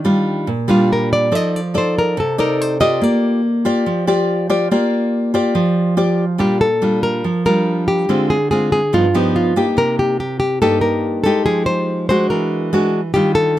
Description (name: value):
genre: bossa nova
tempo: 142 BPM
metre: 4/4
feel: straight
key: Bb major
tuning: A4 = 442 Hz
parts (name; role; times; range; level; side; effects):
- nylon-string guitar; accompaniment; 0.0-13.6 s; G2 to D5; -16 LUFS; equal; none
- nylon-string guitar; melody; 0.7-13.6 s; F4 to Eb5; -18 LUFS; left 1 dB; none
room: little or no reverb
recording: close, detailed microphones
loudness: -14 LUFS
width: side -13 dB against mid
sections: 0.0-6.4 A section; 6.4-13.6 B section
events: nylon-string guitar solo 0.0-6.4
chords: 0.0 Ebmaj9; 1.3 F13; 3.0 Bb6; 8.1 Dm7b5; 8.9 G7b13; 9.8 Cm7; 11.5 Fm9; 12.3 E9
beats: 0.05 0.47 0.90 | 1.32 1.74 2.17 2.59 | 3.01 3.43 3.86 4.28 | 4.70 5.12 5.54 5.97 | 6.39 6.81 7.23 7.66 | 8.08 8.50 8.92 9.35 | 9.77 10.19 10.61 11.03 | 11.46 11.88 12.30 12.72 | 13.14 13.56